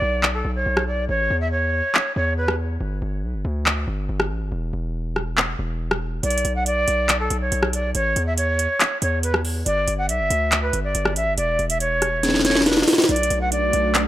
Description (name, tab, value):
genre	hip hop, trap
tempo	140 BPM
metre	4/4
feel	half-time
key	B minor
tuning	A4 = 437 Hz
part	breathy bright concert flute	melody	0.0-2.5, 6.2-14.0 s	A4 to F#5	-22 LUFS	right 1 dB	low-pass filter
part	hard-hitting 808-style bass	bass	0.0-14.1 s	E1 to E2	-24 LUFS	equal	none
part	trap drum kit	drums	0.2-14.0 s	handclaps, hi-hat, rim click, snare drum	-20 LUFS	equal	overdrive
part	airy breathy pad	sustained chords	13.3-14.1 s	A3 to B4	-28 LUFS	equal	chorus
room	light reverb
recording	none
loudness	-19 LUFS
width	side -14 dB against mid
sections	0.0-14.1 A section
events	break 0.0-6.2; drum fill 12.2-13.1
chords	0.0 Bm; 1.1 A (rootless); 2.8 G5; 4.5 N.C.; 6.2 Bm; 7.9 A (rootless); 9.7 G5; 11.4 C#m/E; 13.1 Bm7